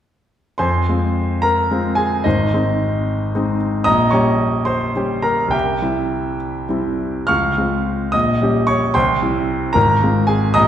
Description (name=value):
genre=classical, romantic character piece for solo piano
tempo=66-78 BPM (dotted quarters)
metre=6/8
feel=rubato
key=F minor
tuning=A4 = 440 Hz
part: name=clear grand piano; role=solo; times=0.6-10.7 s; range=Ab1 to F6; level=-15 LUFS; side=equal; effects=none
room=wet scoring stage reverb, RT60 1.5 s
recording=recorded in a church or concert hall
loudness=-15 LUFS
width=side -10 dB against mid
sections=0.6-10.7 A section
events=none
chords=0.6 Fm; 2.3 Ab; 3.9 Gdim/Bb; 5.5 C; 7.3 Dbmaj7; 8.1 Gdim/Bb; 8.9 C; 9.8 Fm/Ab